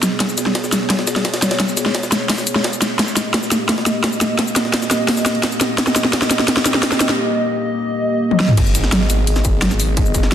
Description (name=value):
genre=dark technical drum and bass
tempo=172 BPM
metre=4/4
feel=straight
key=G# harmonic minor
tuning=A4 = 440 Hz
part: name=dark analog pad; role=sustained chords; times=0.0-10.3 s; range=A#3 to D#5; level=-22 LUFS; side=right 1 dB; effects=chorus, sidechain pumping
part: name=dubstep drum kit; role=drums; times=0.0-10.3 s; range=crash cymbal, hi-hat, shaker, snare drum, toms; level=-17 LUFS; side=left 1 dB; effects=none
part: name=jungle sampler-style drum kit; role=drums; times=0.0-10.3 s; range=hi-hat, ride cymbal, snare drum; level=-26 LUFS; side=right 1 dB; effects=high-pass filter on cymbals, high-pass filter on snare, high-pass filter on hats
part: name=electronic kick drum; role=drums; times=0.2-10.2 s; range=none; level=-23 LUFS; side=equal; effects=distortion, high-pass filter on kick
part: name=snarling distorted saw bass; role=bass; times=8.6-10.3 s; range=G#1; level=-18 LUFS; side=equal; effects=sidechain pumping
room=moderate lush hall reverb, RT60 2.2 s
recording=dense, heavily limited modern master, lossy compression artefacts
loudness=-15 LUFS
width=side -9 dB against mid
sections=0.0-8.6 A section; 8.6-10.3 B section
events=build-up 0.0-8.6; drum fill 0.0-7.2, 8.3; drop 8.6-10.3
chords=0.0 G#m; 3.0 D#; 8.6 G#m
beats=| 0.20 0.55 0.90 1.25 | 1.60 1.95 2.30 2.65 | 2.99 3.34 3.69 4.04 | 4.39 4.74 5.09 5.43 | 5.78 6.13 6.48 6.83 | 7.18 7.53 7.88 8.23 | 8.57 8.92 9.27 9.62 | 9.97 10.32